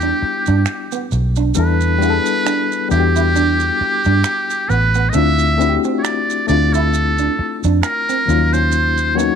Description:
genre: R&B, neo-soul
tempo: 67 BPM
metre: 4/4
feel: swing 57% on 16ths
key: E phrygian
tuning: A4 = 440 Hz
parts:
  - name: trumpet with metal mute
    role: melody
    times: 0.0-9.4 s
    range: G4 to E5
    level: -18 LUFS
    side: right 2 dB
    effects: slapback echo
  - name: clean electric guitar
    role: second line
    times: 0.0-9.4 s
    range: B3 to E4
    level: -23 LUFS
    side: right 13 dB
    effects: none
  - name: barky reed electric piano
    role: accompaniment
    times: 0.0-9.4 s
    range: E#3 to A4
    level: -20 LUFS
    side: left 12 dB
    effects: fast tremolo
  - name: vintage muted fingered electric bass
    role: bass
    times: 0.0-9.3 s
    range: A1 to G2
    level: -17 LUFS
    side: right 1 dB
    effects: none
  - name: maracas and finger snaps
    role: percussion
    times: 0.0-9.4 s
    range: none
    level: -27 LUFS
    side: right 13 dB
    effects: none
room: light reverb, small room reverb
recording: 1960s-style stereo with parts hard left and right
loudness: -14 LUFS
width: side -7 dB against mid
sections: 0.0-9.4 A section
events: none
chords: 0.0 Em9; 5.1 Dm9; 8.3 D#m9

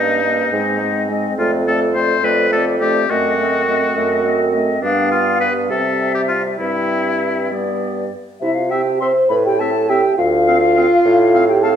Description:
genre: quick classical-period movement for wind quintet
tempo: 69 BPM (dotted quarters)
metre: 6/8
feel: straight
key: C major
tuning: A4 = 440 Hz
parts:
  - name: silver concert flute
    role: melody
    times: 0.0-11.7 s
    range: D5 to C6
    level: -22 LUFS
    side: left 7 dB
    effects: none
  - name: clear oboe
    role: second line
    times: 0.0-11.7 s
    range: D4 to F5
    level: -20 LUFS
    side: left 3 dB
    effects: none
  - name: mellow French horn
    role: accompaniment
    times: 0.0-11.8 s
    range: G3 to C5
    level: -19 LUFS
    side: right 1 dB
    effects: none
  - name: warm clarinet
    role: accompaniment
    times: 0.0-11.7 s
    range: B3 to Db4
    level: -26 LUFS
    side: right 6 dB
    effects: none
  - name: warm bassoon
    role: bass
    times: 0.0-11.8 s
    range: D2 to C3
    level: -19 LUFS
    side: right 3 dB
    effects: none
room: wet recital hall reverb, RT60 1.7 s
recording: minimal, uncompressed stereo recording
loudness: -14 LUFS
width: side -8 dB against mid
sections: 0.0-8.4 A section; 8.4-11.8 B section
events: none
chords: 0.0 Eb7/G; 0.5 Ab; 1.4 Dm7/F; 3.1 F#dim7; 4.8 G7; 5.7 C; 6.6 C/G; 7.5 G; 8.4 C; 9.3 Am; 10.2 Dm7

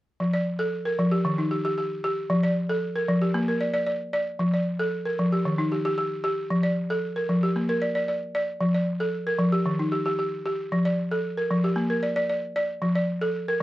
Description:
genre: west african traditional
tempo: 114 BPM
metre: 4/4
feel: straight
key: F mixolydian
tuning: A4 = 441 Hz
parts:
  - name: balafon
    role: arpeggios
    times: 0.2-13.6 s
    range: Eb3 to D5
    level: -23 LUFS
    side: equal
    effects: none
room: little or no reverb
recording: close, detailed microphones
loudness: -23 LUFS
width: side -16 dB against mid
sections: 0.2-13.6 A section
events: none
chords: 0.2 F; 1.3 Eb; 2.3 F; 3.4 Bb; 4.4 F; 5.5 Eb; 6.5 F; 7.6 Bb; 8.6 F; 9.7 Eb; 10.7 F; 11.8 Bb; 12.8 F

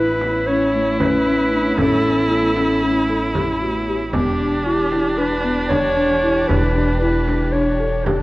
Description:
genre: contemporary instrumental, chamber music in an uneven meter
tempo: 229 BPM (eighths)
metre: 9/8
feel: straight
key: E dorian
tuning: A4 = 440 Hz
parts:
  - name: warm clarinet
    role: melody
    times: 0.0-8.2 s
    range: D4 to C#5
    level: -21 LUFS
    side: equal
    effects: none
  - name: clear viola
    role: second line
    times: 0.0-8.2 s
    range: D4 to E4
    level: -23 LUFS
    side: right 1 dB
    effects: none
  - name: muted studio string section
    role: sustained chords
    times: 0.0-8.2 s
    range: E3 to G4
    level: -28 LUFS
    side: equal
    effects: none
  - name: folk marimba with soft mallets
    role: arpeggios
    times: 0.0-8.2 s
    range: A3 to A4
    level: -20 LUFS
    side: left 1 dB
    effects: none
  - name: upright bass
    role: bass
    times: 0.0-8.2 s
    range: E1 to A1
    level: -25 LUFS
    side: right 1 dB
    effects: none
  - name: frame drum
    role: percussion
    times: 0.2-8.2 s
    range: none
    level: -27 LUFS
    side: right 2 dB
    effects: none
room: wet recital hall reverb, RT60 1.5 s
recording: worn, warbling old tape, cassette tape, warbly pitch drift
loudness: -16 LUFS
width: side -19 dB against mid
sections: 0.0-8.2 A section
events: none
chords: 0.0 Aadd9; 4.1 Em7

